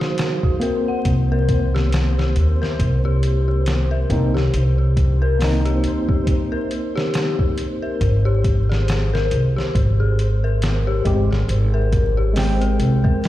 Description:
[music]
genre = trip hop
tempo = 69 BPM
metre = 4/4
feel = swing 58% on 16ths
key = unclear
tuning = A4 = 440 Hz
[part]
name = overdriven tine electric piano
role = accompaniment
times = 0.0-13.3 s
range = Gb3 to G5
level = -26 LUFS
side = equal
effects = harmonic tremolo, tape echo
[part]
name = dark detuned synth bell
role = arpeggios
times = 0.0-13.3 s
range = Gb4 to Gb5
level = -26 LUFS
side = left 4 dB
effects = chorus, phaser, ping-pong delay
[part]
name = trip hop sampler-style drum kit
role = drums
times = 0.0-13.3 s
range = hi-hat, kick drum, snare drum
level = -22 LUFS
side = equal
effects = vintage 12-bit sampler grit
[part]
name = flickering grainy texture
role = texture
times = 0.0-13.3 s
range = C5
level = -33 LUFS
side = right 3 dB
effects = built-in reverb
[part]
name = upright bass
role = bass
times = 1.0-13.0 s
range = Ab1 to Eb2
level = -18 LUFS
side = equal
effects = tube saturation
[sound]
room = digital ambience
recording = played on a big sound system in a bare room, large studio reverb, vinyl crackle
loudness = -16 LUFS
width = side -14 dB against mid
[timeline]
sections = 0.0-13.3 A section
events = none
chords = 0.0 Ebmadd9; 1.1 Cm7; 8.0 Abmaj7

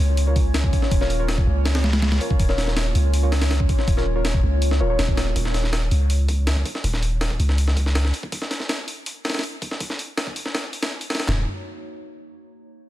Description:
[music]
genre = drum and bass, jungle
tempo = 162 BPM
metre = 4/4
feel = straight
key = unclear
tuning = A4 = 441 Hz
[part]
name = long sustained 808-style bass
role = bass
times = 0.0-8.1, 11.3-11.5 s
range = Eb1 to Db2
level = -20 LUFS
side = equal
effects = none
[part]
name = breakbeat sampler-style drum kit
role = drums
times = 0.2-11.4 s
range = handclaps, hi-hat, kick drum, snare drum, toms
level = -23 LUFS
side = equal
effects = high-pass filter on hats, small room ambience, high-pass filter on snare, high-pass filter on kick, high-pass filter on toms
[part]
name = deep mellow chord stab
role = stabs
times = 0.3-5.0 s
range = F4 to Db5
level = -30 LUFS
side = left 1 dB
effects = chorus, dub echo
[sound]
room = digital ambience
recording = dense, heavily limited modern master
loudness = -19 LUFS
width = side -14 dB against mid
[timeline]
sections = 0.0-5.4 A section; 5.4-11.3 B section; 11.3-12.8 C section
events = drop 0.0-5.4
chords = 0.0 Bbm/Eb; 5.4 Dbsus2/Eb; 11.3 Ebm7

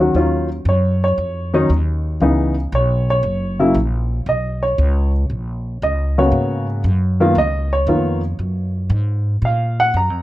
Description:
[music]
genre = jazz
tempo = 116 BPM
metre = 4/4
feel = swing 69% on 8ths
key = Eb minor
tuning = A4 = 438 Hz
[part]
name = dark baby grand piano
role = melody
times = 0.0-10.2 s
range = Db3 to Bb5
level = -18 LUFS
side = equal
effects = none
[part]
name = upright bass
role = bass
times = 0.0-10.2 s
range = Gb1 to Bb2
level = -18 LUFS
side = equal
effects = none
[sound]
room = small room reverb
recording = dry, close 1970s-style studio recording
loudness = -16 LUFS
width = side -16 dB against mid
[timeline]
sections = 0.2-10.2 A section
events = none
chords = 0.2 Ebm9; 2.2 Dbm9; 3.2 Gb; 4.3 Bsus2; 6.3 Abm11; 7.4 Db13; 8.4 Gbadd9

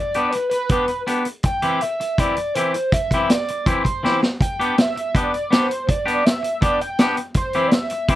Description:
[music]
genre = indie rock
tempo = 162 BPM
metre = 4/4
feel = straight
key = G major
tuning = A4 = 440 Hz
[part]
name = overdriven synth lead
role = melody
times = 0.0-8.2 s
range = B4 to G5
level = -23 LUFS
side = right 1 dB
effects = distortion, chorus, slapback echo
[part]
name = twangy electric guitar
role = riff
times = 0.1-8.2 s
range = E3 to G4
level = -21 LUFS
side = left 1 dB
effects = none
[part]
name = vintage drum kit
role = drums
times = 0.1-8.2 s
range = hi-hat, kick drum, snare drum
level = -20 LUFS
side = equal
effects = none
[sound]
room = little or no reverb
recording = dry, close 1970s-style studio recording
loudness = -17 LUFS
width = side -14 dB against mid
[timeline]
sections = 0.0-8.2 A section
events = drum fill 4.0-4.4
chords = 0.0 G; 1.5 C; 4.4 G; 7.4 C

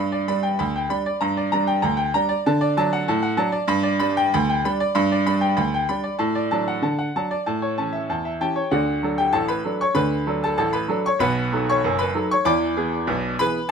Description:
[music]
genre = ragtime piano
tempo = 96 BPM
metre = 2/4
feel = straight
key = D major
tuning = A4 = 440 Hz
[part]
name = bright baby grand piano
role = solo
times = 0.0-13.7 s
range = F#1 to D6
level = -19 LUFS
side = equal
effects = none
[sound]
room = moderate studio reverb, RT60 0.6 s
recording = minimal, uncompressed stereo recording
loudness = -19 LUFS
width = side -6 dB against mid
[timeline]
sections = 0.0-8.7 A section; 8.7-13.7 B section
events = none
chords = 0.0 G; 1.2 Gm; 2.5 D; 3.7 G; 6.2 D/A; 7.5 A; 8.7 D; 11.2 B7; 12.5 E7

